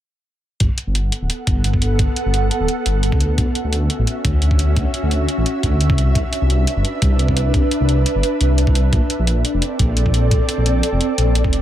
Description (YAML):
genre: liquid drum and bass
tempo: 173 BPM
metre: 4/4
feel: straight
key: G major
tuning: A4 = 440 Hz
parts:
  - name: ethereal airy pad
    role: sustained chords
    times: 1.1-11.6 s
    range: B3 to F#5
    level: -22 LUFS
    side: right 1 dB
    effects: ensemble chorus, built-in reverb
  - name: dark detuned saw bass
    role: bass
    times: 0.6-11.6 s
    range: D1 to D2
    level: -17 LUFS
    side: equal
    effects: none
  - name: electronic hi-hat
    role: drums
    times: 0.6-11.6 s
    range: none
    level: -25 LUFS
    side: equal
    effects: none
  - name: electronic kick drum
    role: drums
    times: 0.6-11.5 s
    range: none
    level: -19 LUFS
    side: equal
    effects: none
room: little or no reverb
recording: none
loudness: -15 LUFS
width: side -12 dB against mid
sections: 0.6-11.6 A section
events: none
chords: 0.6 Gmaj9; 3.2 Dmaj9; 6.0 Cmaj9; 8.9 Bbmaj9